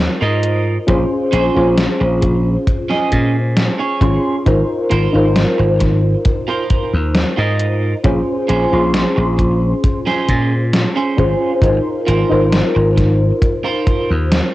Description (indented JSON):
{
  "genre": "vaporwave",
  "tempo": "67 BPM",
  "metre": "4/4",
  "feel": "straight",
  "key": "Ab major",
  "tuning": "A4 = 440 Hz",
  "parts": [
    { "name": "mellow FM electric piano", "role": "accompaniment", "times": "0.0-14.5 s", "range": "Db4 to C6", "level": "-18 LUFS", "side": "left 1 dB", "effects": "ensemble chorus, cassette tape, tape echo" },
    { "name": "slap bass", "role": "bass", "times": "0.0-14.4 s", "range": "Ab1 to Bb2", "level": "-16 LUFS", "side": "equal", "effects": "tube saturation" },
    { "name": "electric guitar at the edge of break-up", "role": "riff", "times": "0.2-14.1 s", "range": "Db4 to Eb5", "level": "-22 LUFS", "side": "right 4 dB", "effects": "lush chorus, vintage 12-bit sampler grit, cassette tape, tape echo" },
    { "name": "gated 80s digital drum machine", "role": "drums", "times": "0.4-14.5 s", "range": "hi-hat, snare drum", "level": "-18 LUFS", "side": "equal", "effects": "gated reverb, gated reverb snare, overdrive, cassette tape" },
    { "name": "kick drum", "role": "drums", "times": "0.9-14.1 s", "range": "none", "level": "-17 LUFS", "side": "equal", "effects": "cassette tape" }
  ],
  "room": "light reverb, small room ambience",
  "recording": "home recording on cassette",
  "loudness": "-13 LUFS",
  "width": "side -16 dB against mid",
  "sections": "0.0-14.5 A section",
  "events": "none",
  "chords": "0.0 Ab69; 0.9 Bbm9; 4.5 Ab69; 8.0 Bbm9; 11.6 Ab69",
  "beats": "| 0.88 1.78 2.67 3.57 | 4.46 5.36 6.25 7.15 | 8.04 8.94 9.84 10.73 | 11.63 12.52 13.42 14.31"
}